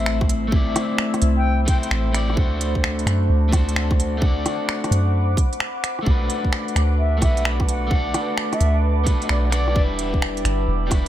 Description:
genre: future garage.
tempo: 130 BPM.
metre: 4/4.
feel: swing 65% on 16ths.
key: A dorian.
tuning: A4 = 439 Hz.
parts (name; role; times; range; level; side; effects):
bright reedy baroque flute; melody; 0.0-1.9, 7.0-9.8 s; D5 to G5; -30 LUFS; left 2 dB; ping-pong delay.
electric guitar at the edge of break-up; accompaniment; 0.0-11.1 s; G3 to D5; -26 LUFS; left 2 dB; sidechain pumping, tape echo.
deep dark ambient pad; sustained chords; 0.0-11.1 s; B4 to E6; -29 LUFS; equal; chorus, built-in reverb, vintage 12-bit sampler grit, sidechain pumping.
soft 808-style bass; bass; 0.0-11.1 s; E1 to F#2; -21 LUFS; equal; sidechain pumping.
organic electronic drum kit; drums; 0.1-11.0 s; finger snaps, hi-hat, rim click; -26 LUFS; right 1 dB; studio reverb.
electronic kick drum; drums; 0.2-11.0 s; none; -19 LUFS; equal; studio reverb.
room: light reverb.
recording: none.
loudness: -18 LUFS.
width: side -12 dB against mid.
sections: 0.0-11.1 A section.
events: none.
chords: 0.0 Am; 2.4 D7; 6.1 Bm7; 9.8 Em7.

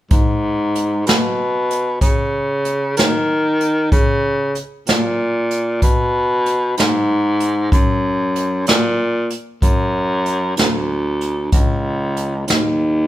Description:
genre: slow blues.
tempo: 63 BPM (dotted quarters).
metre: 12/8.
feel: straight.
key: unclear.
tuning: A4 = 440 Hz.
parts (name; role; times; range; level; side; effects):
mellow baritone saxophone; bass; 0.1-13.1 s; Db2 to Eb3; -17 LUFS; equal; none.
jazz brush drum kit; drums; 0.1-12.6 s; hi-hat, kick drum, snare drum; -17 LUFS; equal; none.
room: moderate large studio reverb, RT60 1.0 s.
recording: band playing live in one room.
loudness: -15 LUFS.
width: side -14 dB against mid.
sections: 0.1-13.1 A section.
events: none.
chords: none.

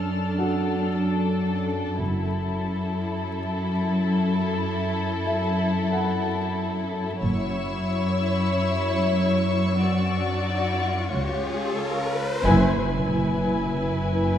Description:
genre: cinematic, suspense film score.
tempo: free time.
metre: none.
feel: none.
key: F# minor.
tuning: A4 = 440 Hz.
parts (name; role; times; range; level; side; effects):
warm symphonic violin section; second line; 0.0-14.4 s; D4 to D5; -27 LUFS; left 2 dB; none.
rich symphonic cello section; bass; 0.0-14.4 s; C#2 to F#2; -25 LUFS; equal; none.
dark baby grand piano; texture; 0.0-14.4 s; F#4 to B5; -35 LUFS; left 1 dB; none.
warm symphonic violin section; texture; 0.0-1.6, 7.2-12.1 s; C#6 to E#6; -34 LUFS; left 3 dB; none.
warm symphonic double bass section; bass; 2.0-2.6, 7.2-14.4 s; F#1 to C#2; -27 LUFS; right 1 dB; none.
riser and impact; sound effects; 9.6-14.4 s; none; -31 LUFS; left 1 dB; none.
dark symphonic violin section; melody; 12.4-14.4 s; G#5; -30 LUFS; left 6 dB; none.
warm studio viola section; accompaniment; 12.4-14.4 s; E4; -28 LUFS; right 2 dB; none.
taiko ensemble; drums; 12.4-13.7 s; none; -29 LUFS; equal; none.
room: moderate scoring stage reverb, RT60 1.6 s.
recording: minimal, uncompressed stereo recording, vinyl crackle.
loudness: -22 LUFS.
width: side -10 dB against mid.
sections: 0.0-12.4 A section; 12.4-14.4 B section.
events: riser 9.6-12.4; band accent 12.4-13.1; impact 12.4-14.4.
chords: 0.0 D/F#; 11.1 C#; 12.4 E/F#.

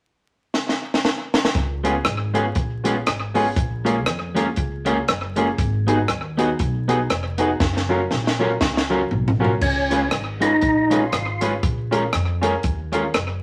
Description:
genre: ska.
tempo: 119 BPM.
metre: 4/4.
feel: swing 58% on 8ths.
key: Db mixolydian.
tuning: A4 = 440 Hz.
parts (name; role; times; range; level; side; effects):
compact cocktail drum kit; drums; 0.5-13.3 s; crash cymbal, hi-hat, kick drum, rim click, snare drum, toms; -25 LUFS; equal; slapback echo.
upright bass; bass; 1.6-13.4 s; F1 to F2; -29 LUFS; equal; none.
electric guitar at the edge of break-up; accompaniment; 1.8-13.0 s; Gb3 to Cb5; -27 LUFS; equal; none.
clear upright piano; stabs; 1.8-13.0 s; Bb3 to Cb5; -26 LUFS; equal; none.
percussive tonewheel organ; melody; 9.6-11.5 s; Db4 to F4; -22 LUFS; equal; overdrive, chorus vibrato, fast rotary speaker.
room: wet studio reverb, RT60 0.6 s.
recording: vinyl crackle.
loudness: -21 LUFS.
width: mono.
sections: 0.0-1.5 A section; 1.5-9.6 B section; 9.6-13.4 C section.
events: drum fill 0.5-1.5, 7.6-9.6.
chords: 0.0 N.C.; 1.5 Db7; 3.6 Bbm7; 5.6 Abm7; 7.6 Gbmaj7; 9.6 Db7; 11.6 Bbm7.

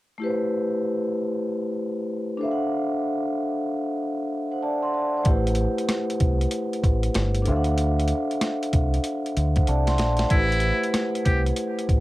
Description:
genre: hip hop, boom-bap hip-hop.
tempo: 95 BPM.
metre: 4/4.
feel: swing 63% on 16ths.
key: A dorian.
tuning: A4 = 440 Hz.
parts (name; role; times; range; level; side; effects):
vibraphone with medium mallets; accompaniment; 0.2-12.0 s; A3 to C6; -25 LUFS; equal; high-pass filter, low-pass filter, cassette tape.
boom bap sampler-style drum kit; drums; 5.2-12.0 s; hi-hat, kick drum, rim click, snare drum; -24 LUFS; equal; none.
deep dub fingered electric bass; bass; 5.3-12.0 s; G1 to D2; -23 LUFS; equal; tube saturation.
trumpet with metal mute; melody; 10.3-11.4 s; E4 to G4; -26 LUFS; equal; high-pass filter, low-pass filter, analog delay.
room: little or no reverb.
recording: home recording on cassette.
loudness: -22 LUFS.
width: side -17 dB against mid.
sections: 0.2-10.3 A section; 10.3-12.0 B section.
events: drum fill 9.7-10.3.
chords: 0.2 Am7; 2.4 D7; 5.3 Am7; 7.5 D7; 10.3 Am7.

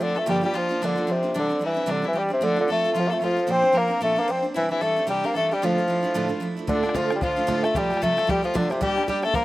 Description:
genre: celtic folk, Celtic reel.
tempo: 225 BPM.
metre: 4/4.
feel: swing 58% on 8ths.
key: D minor.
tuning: A4 = 440 Hz.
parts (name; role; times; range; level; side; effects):
warm bassoon; melody; 0.0-9.4 s; C3 to C4; -23 LUFS; equal; slapback echo.
rich fiddle; second line; 0.0-9.4 s; C4 to C5; -29 LUFS; left 4 dB; slapback echo.
picked steel-string acoustic guitar; accompaniment; 0.0-9.4 s; D2 to G4; -27 LUFS; right 3 dB; none.
bodhran; percussion; 6.7-9.4 s; none; -31 LUFS; left 1 dB; none.
room: little or no reverb.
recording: recorded outdoors, with no room sound.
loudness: -21 LUFS.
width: side -16 dB against mid.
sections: 0.0-6.7 A section; 6.7-9.4 B section.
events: none.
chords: 0.3 Gm7; 1.3 Cadd9; 2.4 F; 3.5 Bbadd9; 4.6 Cadd9; 5.6 Dmadd9; 6.7 Dm; 7.8 Fadd9; 8.8 Gm.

